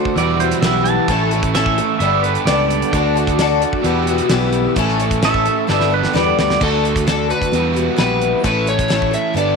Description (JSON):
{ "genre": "folk rock and heartland rock", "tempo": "131 BPM", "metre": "4/4", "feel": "straight", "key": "D major", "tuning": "A4 = 440 Hz", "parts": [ { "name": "pedal steel guitar", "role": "second line", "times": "0.0-6.6 s", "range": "B4 to A5", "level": "-21 LUFS", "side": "right 10 dB", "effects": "none" }, { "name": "picked twelve-string acoustic guitar", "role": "accompaniment", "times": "0.0-9.6 s", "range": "E2 to A4", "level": "-19 LUFS", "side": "left 12 dB", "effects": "none" }, { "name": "mellow tonewheel organ", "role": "sustained chords", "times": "0.0-6.6 s", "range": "G3 to E6", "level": "-28 LUFS", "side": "equal", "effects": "slow rotary speaker" }, { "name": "crunchy overdriven guitar", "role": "riff", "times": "0.0-9.6 s", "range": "E2 to A4", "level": "-21 LUFS", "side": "right 14 dB", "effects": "none" }, { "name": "damped 70s drum kit", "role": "drums", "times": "0.1-9.5 s", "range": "crash cymbal, hi-hat, kick drum, snare drum", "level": "-22 LUFS", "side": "right 1 dB", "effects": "none" }, { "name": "fingered electric bass", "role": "bass", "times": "0.2-9.6 s", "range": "G1 to E2", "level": "-21 LUFS", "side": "equal", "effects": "none" }, { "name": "overdriven slide guitar", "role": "melody", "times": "6.6-9.6 s", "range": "A4 to E5", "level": "-20 LUFS", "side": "left 2 dB", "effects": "none" } ], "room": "moderate echo chamber reverb, RT60 2.0 s", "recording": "1960s-style stereo with parts hard left and right", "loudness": "-14 LUFS", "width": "side -4 dB against mid", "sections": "0.0-6.6 A section; 6.6-9.6 B section", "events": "pedal steel guitar solo 0.0-6.6; drum fill 5.7-6.6", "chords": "0.2 Emadd9; 1.1 A; 2.0 Gadd9; 2.9 D; 3.8 Emadd9; 4.8 A; 5.7 Gadd9; 6.6 D; 7.5 Emadd9; 8.4 A" }